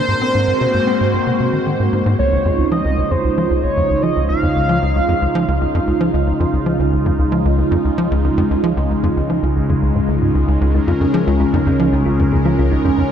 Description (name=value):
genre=ambient, sequencer-driven space music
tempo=114 BPM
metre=4/4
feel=straight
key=Db major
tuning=A4 = 438 Hz
part: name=pulse-width lead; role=melody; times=0.0-5.8 s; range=C5 to F5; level=-21 LUFS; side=equal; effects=chorus, ping-pong delay
part: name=phased analog pad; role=sustained chords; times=0.0-13.1 s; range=Db2 to Bb4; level=-17 LUFS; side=right 1 dB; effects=phaser, chorus
part: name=pulsing gated texture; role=texture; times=0.0-2.2 s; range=Bb3 to Bb4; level=-34 LUFS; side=equal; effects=none
part: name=tight sequencer bass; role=riff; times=0.1-13.0 s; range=Db2 to C4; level=-18 LUFS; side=equal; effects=analog chorus, ping-pong delay
part: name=thumb-piano-like synth pluck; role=arpeggios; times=10.7-13.0 s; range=Db4 to Ab4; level=-21 LUFS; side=moving between left 5 dB and right 2 dB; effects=chorus, auto-pan, ping-pong delay
room=wet huge ambient reverb, RT60 8.2 s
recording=dark, warm production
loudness=-14 LUFS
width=side -8 dB against mid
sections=0.0-2.2 A section; 2.2-13.1 B section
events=none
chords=0.1 Ab7; 2.2 Dbadd9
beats=| 0.09 0.61 1.14 1.66 | 2.19 2.72 3.24 3.77 | 4.29 4.82 5.35 5.87 | 6.40 6.93 7.45 7.98 | 8.51 9.03 9.56 10.09 | 10.61 11.14 11.66 12.19 | 12.72